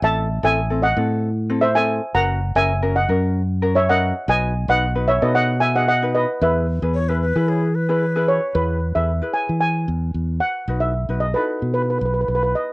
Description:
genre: calypso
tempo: 113 BPM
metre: 4/4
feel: straight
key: E major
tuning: A4 = 440 Hz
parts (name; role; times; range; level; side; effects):
- steel pan; melody; 0.0-12.7 s; B4 to A#5; -19 LUFS; right 1 dB; cassette tape
- ukulele; accompaniment; 0.0-12.0 s; C4 to B4; -25 LUFS; left 2 dB; cassette tape
- fingered electric bass; bass; 0.0-12.5 s; F#1 to E3; -21 LUFS; equal; none
- bright baroque flute; second line; 6.9-8.5 s; G#4 to C#5; -26 LUFS; left 1 dB; cassette tape, analog delay
room: light reverb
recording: home recording on cassette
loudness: -17 LUFS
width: side -24 dB against mid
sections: 0.0-8.5 A section; 8.5-12.7 B section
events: none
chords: 0.0 Am; 2.2 F#7; 4.3 B7; 6.4 E; 10.7 B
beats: | 0.02 0.56 1.09 1.62 | 2.15 2.69 3.22 3.75 | 4.28 4.82 5.35 5.88 | 6.41 6.95 7.48 8.01 | 8.54 9.08 9.61 10.15 | 10.68 11.22 11.75 12.29

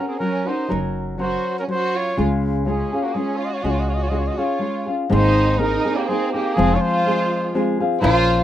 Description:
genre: mexican folk, mariachi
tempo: 123 BPM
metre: 3/4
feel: straight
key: Db major, Ab major from 5.1 s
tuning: A4 = 438 Hz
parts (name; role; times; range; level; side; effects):
- warm trumpet; melody; 0.0-8.4 s; Gb4 to Eb5; -24 LUFS; equal; none
- warm studio violin section; second line; 0.0-8.4 s; Bb3 to Gb4; -26 LUFS; right 4 dB; none
- nylon-string guitar; accompaniment; 0.0-8.4 s; Ab2 to Bb4; -21 LUFS; left 2 dB; none
- upright bass; bass; 0.7-8.4 s; F1 to Db2; -23 LUFS; equal; none
room: little or no reverb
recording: rough home demo mix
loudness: -18 LUFS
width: side -11 dB against mid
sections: 0.0-5.1 A section; 5.1-8.4 B section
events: none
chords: 0.0 Gb; 2.2 Db; 5.1 Abadd9; 6.6 Fm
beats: 0.22 | 0.71 1.20 1.69 | 2.18 2.66 3.15 | 3.63 4.12 4.62 | 5.12 5.61 6.10 | 6.58 7.07 7.55 | 8.04

